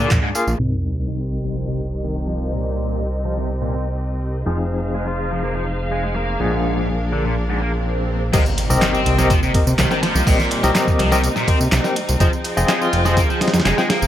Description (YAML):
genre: breakbeat, breaks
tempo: 124 BPM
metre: 4/4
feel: straight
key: C minor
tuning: A4 = 436 Hz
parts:
  - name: rich symphonic string section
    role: sustained chords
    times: 0.0-14.1 s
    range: C3 to G5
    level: -26 LUFS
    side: equal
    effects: sidechain pumping
  - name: overdriven electric guitar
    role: riff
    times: 0.0-14.1 s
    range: Ab2 to F4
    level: -24 LUFS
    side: equal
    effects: vintage 12-bit sampler grit, low-pass filter, dub echo
  - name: barky tine electric piano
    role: stabs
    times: 0.0-13.9 s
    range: F3 to G5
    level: -24 LUFS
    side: left 3 dB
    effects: fast tremolo, vintage 12-bit sampler grit, low-pass filter, dub echo
  - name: fat analog bass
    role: bass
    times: 0.0-14.1 s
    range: F1 to C3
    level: -21 LUFS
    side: equal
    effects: none
  - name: dusty soul sampler-style drum kit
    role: drums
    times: 0.1-0.5, 8.3-14.0 s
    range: crash cymbal, hi-hat, kick drum, snare drum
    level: -20 LUFS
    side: equal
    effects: none
  - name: house drum kit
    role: drums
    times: 0.1-0.6, 8.3-14.1 s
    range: handclaps, ride cymbal, tambourine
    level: -27 LUFS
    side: right 2 dB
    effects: none
  - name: sub drop, swell and impact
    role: sound effects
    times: 0.6-2.5, 7.6-10.3 s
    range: none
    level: -27 LUFS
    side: right 1 dB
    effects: none
room: light reverb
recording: low-pass filter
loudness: -17 LUFS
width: side -11 dB against mid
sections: 0.6-8.3 A section; 8.3-14.1 B section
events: band accent 0.1; impact 0.6-2.5, 8.3-10.3; filter sweep on tine electric piano 0.6-8.3; filter sweep 0.6-8.3; swell 7.6-8.3; drop 8.3-14.1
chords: 0.0 Bb7; 0.6 Cm7; 4.5 Fm7; 6.4 Bb7; 8.3 Cm7; 12.2 Fm7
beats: 0.11 | 0.59 1.08 1.56 2.04 | 2.53 3.01 3.50 3.98 | 4.46 4.95 5.43 5.92 | 6.40 6.88 7.37 7.85 | 8.34 8.82 9.30 9.79 | 10.27 10.75 11.24 11.72 | 12.21 12.69 13.17 13.66